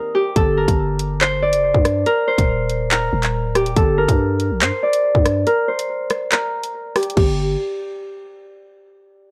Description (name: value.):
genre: hip hop, drill.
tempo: 141 BPM.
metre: 4/4.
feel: half-time.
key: G minor.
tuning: A4 = 440 Hz.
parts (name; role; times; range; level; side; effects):
Celtic harp; melody; 0.0-7.4 s; G4 to D5; -21 LUFS; equal; low-pass filter, tape echo.
growling 808-style bass; bass; 0.4-7.6 s; D1 to G2; -24 LUFS; equal; none.
drill drum kit; drums; 0.4-7.3 s; crash cymbal, handclaps, hi-hat, kick drum, rim click; -21 LUFS; equal; none.
room: little or no reverb.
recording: dry, gritty hardware recording.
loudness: -18 LUFS.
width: mono.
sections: 0.4-7.2 A section; 7.2-8.9 B section.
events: break 0.0-0.4, 5.5-7.2; filter sweep on harp 0.4-7.2.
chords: 0.4 Gm; 2.1 Eb5; 3.8 Gm; 5.5 N.C..